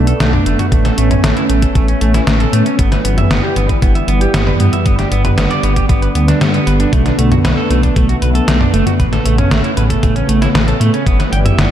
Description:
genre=synthwave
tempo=116 BPM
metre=4/4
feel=straight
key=unclear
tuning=A4 = 440 Hz
part: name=warm analog pad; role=sustained chords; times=0.0-11.7 s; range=C#3 to D4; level=-18 LUFS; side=equal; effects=lush chorus, sidechain pumping
part: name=electric guitar at the edge of break-up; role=arpeggios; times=0.0-11.7 s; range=A3 to G5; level=-19 LUFS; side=right 3 dB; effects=low-pass filter, digital delay
part: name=dark detuned saw bass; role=bass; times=0.0-11.7 s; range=F#1 to A2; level=-15 LUFS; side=equal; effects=none
part: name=detuned 8-bit digital drum machine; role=drums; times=0.1-11.7 s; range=hi-hat, snare drum, toms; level=-17 LUFS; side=equal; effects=none
part: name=electronic kick drum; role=drums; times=0.7-11.2 s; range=none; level=-14 LUFS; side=equal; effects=none
room=moderate lush hall reverb, RT60 2.5 s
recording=dark, warm production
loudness=-10 LUFS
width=side -10 dB against mid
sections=0.0-11.7 A section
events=none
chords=0.0 Bm7; 0.7 Aadd9; 2.8 Em/G; 4.9 G; 6.9 Bm7; 9.0 Aadd9; 11.1 Em/G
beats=0.20 | 0.72 1.24 1.75 2.27 | 2.79 3.31 3.82 4.34 | 4.86 5.38 5.89 6.41 | 6.93 7.45 7.96 8.48 | 9.00 9.51 10.03 10.55 | 11.07 11.58

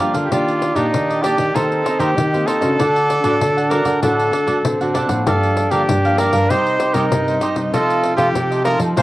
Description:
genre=samba and choro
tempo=97 BPM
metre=4/4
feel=straight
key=unclear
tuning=A4 = 438 Hz
part: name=breathy tenor saxophone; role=second line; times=0.0-9.0 s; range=C4 to G4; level=-24 LUFS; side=right 3 dB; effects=cassette tape
part: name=cavaquinho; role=accompaniment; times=0.0-9.0 s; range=D4 to Ab5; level=-21 LUFS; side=right 2 dB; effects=cassette tape
part: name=nylon-string guitar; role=accompaniment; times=0.0-9.0 s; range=G2 to G4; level=-25 LUFS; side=left 2 dB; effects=cassette tape
part: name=pandeiro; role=percussion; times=0.0-9.0 s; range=none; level=-24 LUFS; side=left 4 dB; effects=none
part: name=nylon-string guitar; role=bass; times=0.1-9.0 s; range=G2 to F3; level=-22 LUFS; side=equal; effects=none
part: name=clear trumpet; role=melody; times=0.2-9.0 s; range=Eb4 to C5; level=-19 LUFS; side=equal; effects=cassette tape
room=moderate spring reverb, RT60 1.3 s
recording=home recording on cassette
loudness=-14 LUFS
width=side -17 dB against mid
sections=0.0-9.0 A section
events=none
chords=0.3 Ebmaj7; 1.6 Cm7/Eb; 2.8 D; 5.3 Gm7; 6.5 Cm; 7.7 F7/C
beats=| 0.32 0.94 1.55 2.17 | 2.79 3.41 4.03 4.65 | 5.26 5.88 6.50 7.12 | 7.74 8.36 8.97

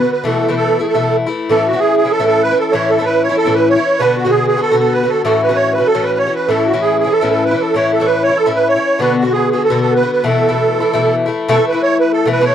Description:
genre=celtic folk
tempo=192 BPM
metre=4/4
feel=swing 55% on 8ths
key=A major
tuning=A4 = 440 Hz
part: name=musette accordion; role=melody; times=0.0-12.5 s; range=F#4 to C#5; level=-14 LUFS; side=right 4 dB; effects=none
part: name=Irish bouzouki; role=accompaniment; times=0.0-12.5 s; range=A2 to F#4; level=-15 LUFS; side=left 4 dB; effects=none
room=little or no reverb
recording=dry, close 1970s-style studio recording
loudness=-12 LUFS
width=side -9 dB against mid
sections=0.0-1.5 A section; 1.5-11.5 A section; 11.5-12.5 B section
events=none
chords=0.2 Asus2; 1.5 A; 4.0 Bm; 5.2 F#m7; 6.5 A; 9.0 Bm; 10.2 Asus2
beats=| 0.24 0.55 0.86 1.18 | 1.49 1.80 2.12 2.43 | 2.74 3.05 3.37 3.68 | 3.99 4.31 4.62 4.93 | 5.24 5.56 5.87 6.18 | 6.50 6.81 7.12 7.43 | 7.75 8.06 8.37 8.68 | 9.00 9.31 9.62 9.93 | 10.24 10.56 10.87 11.18 | 11.49 11.80 12.12 12.43

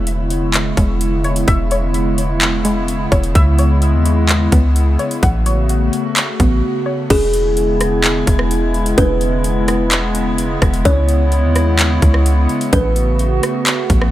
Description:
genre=hip hop, atmospheric cloud-rap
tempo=128 BPM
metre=4/4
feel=half-time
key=E major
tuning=A4 = 444 Hz
part: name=hollow soft pad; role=sustained chords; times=0.0-14.1 s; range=C#3 to F#4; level=-19 LUFS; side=equal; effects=chorus, sidechain pumping
part: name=warbly dusty pluck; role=arpeggios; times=0.0-7.1 s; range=G#3 to F#5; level=-24 LUFS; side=left 1 dB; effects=chorus, tape echo
part: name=soft 808-style bass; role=bass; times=0.0-14.1 s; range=E1 to D#2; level=-16 LUFS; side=equal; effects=none
part: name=trap drum kit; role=drums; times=0.1-14.1 s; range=crash cymbal, handclaps, hi-hat, kick drum, rim click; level=-18 LUFS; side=equal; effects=overdrive
part: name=kalimba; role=melody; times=7.1-14.1 s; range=G#4 to C#5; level=-20 LUFS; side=equal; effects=tape echo
room=digital ambience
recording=none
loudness=-13 LUFS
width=side -14 dB against mid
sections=0.0-7.1 A section; 7.1-14.1 B section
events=break 6.6-7.1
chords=0.0 E6; 3.4 C#m7; 5.2 A69; 7.1 E6; 10.9 C#m7; 12.7 A69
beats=0.07 0.54 1.01 | 1.48 1.95 2.42 2.88 | 3.35 3.82 4.29 4.76 | 5.23 5.70 6.17 6.63 | 7.10 7.57 8.04 8.51 | 8.98 9.45 9.91 10.38 | 10.85 11.32 11.79 12.26 | 12.73 13.20 13.66

